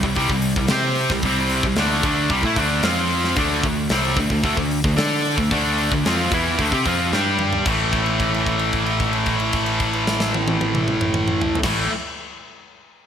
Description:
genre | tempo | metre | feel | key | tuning
heavy metal | 112 BPM | 4/4 | straight | A minor | A4 = 440 Hz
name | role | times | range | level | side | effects
high-gain distorted guitar | riff | 0.0-11.9 s | A2 to D5 | -19 LUFS | equal | distortion
picked electric bass | bass | 0.0-11.9 s | A1 to D3 | -26 LUFS | equal | none
tight metal drum kit | drums | 0.0-11.8 s | crash cymbal, hi-hat, kick drum, snare drum, toms | -24 LUFS | equal | gated reverb
room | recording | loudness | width
moderate lush hall reverb, RT60 2.0 s | bright 1980s-style digital production | -17 LUFS | side -8 dB against mid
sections
0.0-7.7 A section; 7.7-12.0 B section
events
drum fill 7.1-7.7; held note 7.7-11.6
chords
0.0 C5; 2.8 F5; 3.4 D5; 7.1 G5; 7.7 A5

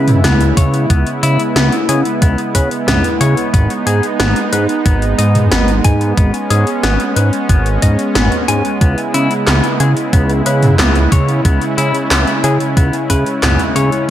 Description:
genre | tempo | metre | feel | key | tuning
synthwave | 91 BPM | 4/4 | straight | C# minor | A4 = 437 Hz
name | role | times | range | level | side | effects
warm analog pad | sustained chords | 0.0-14.1 s | C#3 to E4 | -17 LUFS | right 1 dB | chorus, sidechain pumping
semi-hollow electric guitar | arpeggios | 0.0-14.0 s | B3 to G#5 | -20 LUFS | left 4 dB | tape echo
fat analog bass | bass | 0.0-13.9 s | G#1 to C#3 | -14 LUFS | equal | tube saturation
80s electronic pad drums | drums | 0.1-14.1 s | handclaps, hi-hat, snare drum, toms | -18 LUFS | equal | gated reverb on snare and toms, overdrive, gated reverb
electronic kick drum | drums | 0.6-13.2 s | none | -12 LUFS | equal | none
room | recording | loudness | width
light reverb | none | -11 LUFS | side -12 dB against mid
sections
0.0-14.1 A section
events
none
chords
0.0 C#m7; 3.5 G#m; 8.8 C#m7

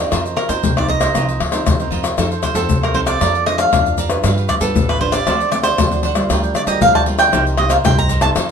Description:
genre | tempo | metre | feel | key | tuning
samba and choro | 116 BPM | 4/4 | straight | unclear | A4 = 440 Hz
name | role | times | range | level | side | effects
cavaquinho | accompaniment | 0.0-8.5 s | D4 to A5 | -24 LUFS | right 8 dB | none
nylon-string guitar | accompaniment | 0.0-8.5 s | G2 to Cb5 | -24 LUFS | left 1 dB | none
upright bass | bass | 0.0-8.5 s | A1 to G2 | -21 LUFS | right 1 dB | none
egg shaker, surdo, pandeiro and tamborim | percussion | 0.1-8.5 s | none | -18 LUFS | left 4 dB | none
cavaquinho | melody | 0.4-8.3 s | A4 to Bb5 | -17 LUFS | right 2 dB | none
room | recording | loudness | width
moderate studio reverb, RT60 0.8 s | minimal, uncompressed stereo recording | -14 LUFS | side -7 dB against mid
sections
0.0-8.5 A section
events
none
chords
0.1 F7sus4; 2.2 F7; 3.2 Bbmaj7/F; 4.2 G7; 5.3 D7; 6.3 Gm7/D; 7.3 Cm7

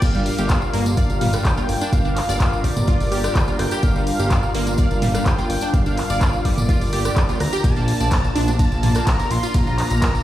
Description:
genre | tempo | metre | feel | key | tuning
progressive house | 126 BPM | 4/4 | straight | unclear | A4 = 439 Hz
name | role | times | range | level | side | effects
wide unison lead | melody | 0.0-10.2 s | D5 to C6 | -27 LUFS | equal | wide subtle chorus, tape echo
filtered supersaw swell | sustained chords | 0.0-10.2 s | G3 to Bb4 | -27 LUFS | equal | vintage 12-bit sampler grit, sidechain pumping
fat analog bass | bass | 0.0-10.2 s | D1 to F2 | -23 LUFS | equal | tube saturation, sidechain pumping
deep house drum kit | drums | 0.0-10.1 s | crash cymbal, handclaps, hi-hat, ride cymbal | -28 LUFS | equal | none
electronic kick drum | drums | 0.0-10.1 s | none | -19 LUFS | equal | overdrive
deep house drum kit | percussion | 0.0-10.0 s | congas, rim click, toms | -27 LUFS | right 1 dB | overdrive, sidechain pumping on perc, sidechain pumping on toms, sidechain pumping on snare
tambourine | percussion | 0.0-10.2 s | none | -35 LUFS | left 2 dB | none
wide unison pluck | arpeggios | 0.1-10.1 s | G3 to Bb5 | -27 LUFS | right 1 dB | phaser, vintage 12-bit sampler grit, sidechain pumping, tape echo
room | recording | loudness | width
light reverb | played on a big sound system in a bare room, stone room reverb | -17 LUFS | side -13 dB against mid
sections
0.0-10.2 A section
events
none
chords
0.0 Gm7; 7.6 Bb

